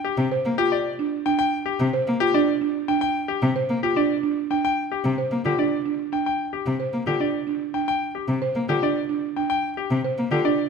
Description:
classical, minimalist pattern music; 111 BPM; 3/4; straight; Bb major; A4 = 441 Hz
bright concert grand piano; melody; 0.0-10.6 s; G4 to G5; -26 LUFS; left 7 dB
rich cello; accompaniment; 0.2-10.4 s; C3 to Bb3; -25 LUFS; left 2 dB
buzzing marimba with soft mallets; arpeggios; 0.3-10.6 s; D4 to C5; -24 LUFS; right 6 dB
wet recital hall reverb, RT60 1.8 s; -21 LUFS; side -5 dB against mid
0.0-10.7 A section
0.0 Bbadd9 (rootless)

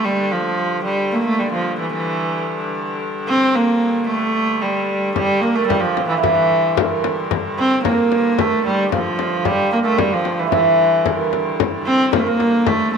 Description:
medieval dance; 112 BPM; 2/4; straight; G dorian; A4 = 441 Hz
rich viola da gamba; melody; 0.0-13.0 s; E3 to C4; -18 LUFS; right 1 dB
clear hurdy-gurdy; drone; 0.0-13.0 s; G2 to D3; -26 LUFS; left 1 dB
hammered dulcimer; second line; 5.2-13.0 s; E4 to C5; -20 LUFS; right 3 dB
frame drum; percussion; 5.2-12.9 s; -22 LUFS; left 11 dB
wet echo chamber reverb, RT60 1.9 s, studio ambience; 1960s-style stereo; -16 LUFS; side -6 dB against mid
0.0-5.2 A section; 5.2-13.0 A section

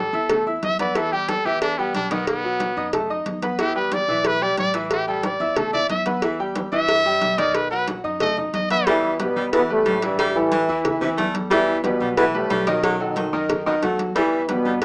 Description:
latin, salsa; 182 BPM; 4/4; straight; E minor; A4 = 435 Hz
bright trumpet; melody; 0.0-8.9 s; B3 to E5; -24 LUFS; equal
bright concert grand piano; accompaniment; 0.0-14.8 s; D#3 to E6; -27 LUFS; equal
upright bass; bass; 0.0-14.8 s; A1 to G2; -39 LUFS; equal
congas; percussion; 0.1-14.8 s; -33 LUFS; equal
cowbell; percussion; 0.3-14.8 s; -29 LUFS; equal
mellow trombone section; melody; 8.9-14.8 s; F#2 to E4; -24 LUFS; equal
clear baritone saxophone; second line; 8.9-14.8 s; B2 to A3; -27 LUFS; equal
moderate studio reverb, RT60 0.7 s; rough home demo mix, small speaker sound; -21 LUFS; mono
0.0-8.9 A section; 8.9-14.8 B section
trumpet solo 0.0-8.9
0.0 A5; 1.0 Em; 2.3 B7; 3.6 A5; 6.2 Em; 7.5 B7; 8.9 Em; 10.2 A7(no3); 11.5 Em; 12.8 B7; 14.2 Em

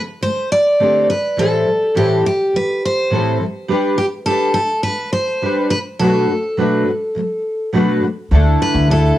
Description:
acoustic pop; 104 BPM; 4/4; straight; A4 = 440 Hz
fingerpicked steel-string acoustic guitar; accompaniment; 0.0-9.2 s; A2 to B4; -17 LUFS; equal; double-tracked left and right, cassette tape
picked steel-string acoustic guitar; melody; 0.2-9.2 s; G4 to D5; -17 LUFS; equal; cassette tape
upright bass; bass; 8.3-9.1 s; D2; -12 LUFS; equal; tube saturation
moderate studio reverb, RT60 0.5 s; home recording on cassette; -14 LUFS; side -14 dB against mid
0.0-8.3 A section
0.0 D7sus4; 1.4 Am7; 3.7 G; 5.7 Bm7; 8.3 Dsus2

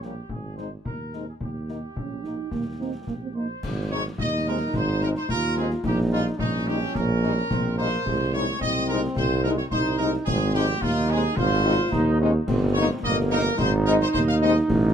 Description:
military-style march for wind band; 108 BPM; 2/4; straight; Ab major; A4 = 441 Hz
dark trumpet section; melody; 0.0-14.5 s; Eb4 to F5; -29 LUFS; equal
warm French horn section; accompaniment; 0.0-14.5 s; G3 to Eb4; -27 LUFS; left 4 dB
mellow tuba; bass; 0.0-14.9 s; G1 to Eb2; -25 LUFS; right 2 dB
concert snare drum, concert bass drum and clash cymbals; drums; 0.0-14.9 s; -31 LUFS; left 2 dB
dark euphonium; second line; 2.0-3.5 s; Bb3 to Eb4; -31 LUFS; right 5 dB
dark trombone section; sustained chords; 4.2-14.9 s; Ab3 to F4; -28 LUFS; equal
little or no reverb; dark, warm production; -21 LUFS; side -8 dB against mid
0.0-3.6 A section; 3.6-14.9 A section
0.3 Ab; 1.4 Eb; 3.6 Ab; 5.8 Eb7/Bb; 8.1 Ab/C; 10.3 Ab; 12.5 Eb/G; 13.6 Ab

